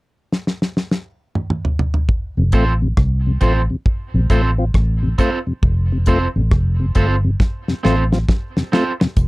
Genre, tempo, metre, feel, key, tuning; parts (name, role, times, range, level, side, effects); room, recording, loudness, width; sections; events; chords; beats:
roots reggae; 68 BPM; 4/4; swing 63% on 16ths; F major; A4 = 439 Hz
damped 70s drum kit; drums; 0.3-9.3 s; hi-hat, kick drum, rim click, snare drum, toms; -17 LUFS; equal
mellow tonewheel organ; accompaniment; 2.4-9.1 s; F2 to F4; -20 LUFS; left 2 dB; chorus vibrato, slow rotary speaker
vintage muted fingered electric bass; bass; 2.4-9.3 s; F1 to C2; -17 LUFS; equal
electric guitar at the edge of break-up; accompaniment; 2.5-9.0 s; C4 to C5; -22 LUFS; right 3 dB
little or no reverb; dark, warm production; -15 LUFS; side -21 dB against mid
0.0-2.1 A section; 2.1-9.2 B section
drum fill 0.3-2.1, 7.4-9.2
0.0 N.C.; 2.1 F
0.32 1.21 | 2.09 2.97 3.86 4.74 | 5.63 6.51 7.40 8.28 | 9.17